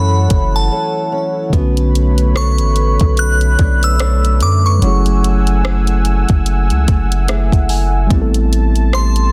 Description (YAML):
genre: contemporary R&B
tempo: 73 BPM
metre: 4/4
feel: swing 58% on 16ths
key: unclear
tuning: A4 = 440 Hz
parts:
  - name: glassy synth bell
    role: melody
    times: 0.0-9.3 s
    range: A5 to F#6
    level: -22 LUFS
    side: equal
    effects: chorus, delay
  - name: mellow tine electric piano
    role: accompaniment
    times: 0.0-9.3 s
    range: D3 to G#5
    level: -24 LUFS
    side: equal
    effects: none
  - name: warm analog pad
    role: sustained chords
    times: 0.0-9.3 s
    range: A3 to E6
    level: -27 LUFS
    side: equal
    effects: chorus, sidechain pumping
  - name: fingerpicked old ladder-braced acoustic guitar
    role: arpeggios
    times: 0.0-9.3 s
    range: F#3 to C#5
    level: -27 LUFS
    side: equal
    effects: delay
  - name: long sustained 808-style bass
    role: bass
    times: 0.0-9.3 s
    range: F#1 to F#2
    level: -16 LUFS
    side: equal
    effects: none
  - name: smooth R&B drum kit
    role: drums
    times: 0.3-9.3 s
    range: hi-hat, kick drum, rim click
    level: -18 LUFS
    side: equal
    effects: soft clipping on snare
room: little or no reverb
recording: dense, heavily limited modern master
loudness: -14 LUFS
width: mono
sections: 0.0-1.5 A section; 1.5-9.3 B section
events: break 0.7-1.5; tine electric piano fill 6.9-8.1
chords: 0.0 F#m7; 1.5 Bm9; 4.8 F#m9; 8.1 Am9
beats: 0.71 | 1.53 2.35 3.17 4.00 | 4.82 5.64 6.46 7.28 | 8.11 8.93